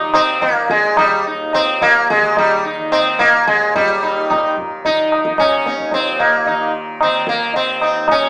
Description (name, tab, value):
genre	indian classical, Hindustani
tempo	110 BPM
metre	5/4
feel	straight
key	Eb raga khamaj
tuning	A4 = 440 Hz
part	sitar	melody	0.0-8.3 s	G3 to Eb4	-17 LUFS	equal	none
part	tanpura	drone	0.0-8.3 s	Eb2 to Eb3	-29 LUFS	equal	none
part	tabla	percussion	0.1-8.3 s	none	-20 LUFS	equal	none
room	wet stone room reverb, RT60 1.1 s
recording	band playing live in one room, small speaker sound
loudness	-15 LUFS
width	mono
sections	0.0-3.8 A section; 3.8-8.3 B section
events	speeding up 0.0-8.3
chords	none